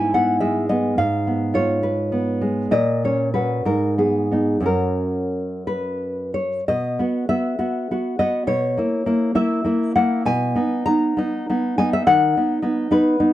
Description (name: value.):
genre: romantic piece for solo classical guitar.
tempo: 57-73 BPM (dotted quarters).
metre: 6/8.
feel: rubato.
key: B major.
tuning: A4 = 437 Hz.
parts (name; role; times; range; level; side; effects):
nylon-string guitar; solo; 0.0-13.3 s; F#2 to A#5; -18 LUFS; equal; none.
room: light reverb.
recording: dark, warm production.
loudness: -18 LUFS.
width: side -13 dB against mid.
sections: 0.0-6.7 A section; 6.7-13.3 B section.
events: none.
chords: 0.0 E/G#; 1.0 C#7/G#; 2.7 F#/A#; 3.7 G#m; 4.7 F#; 6.7 B; 8.5 F#7; 10.2 B; 12.1 B/D#.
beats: 0.11 | 0.96 1.82 | 2.73 3.67 | 4.67 5.67 | 6.67 7.58 | 8.48 9.35 | 10.24 11.16 | 12.05 12.90.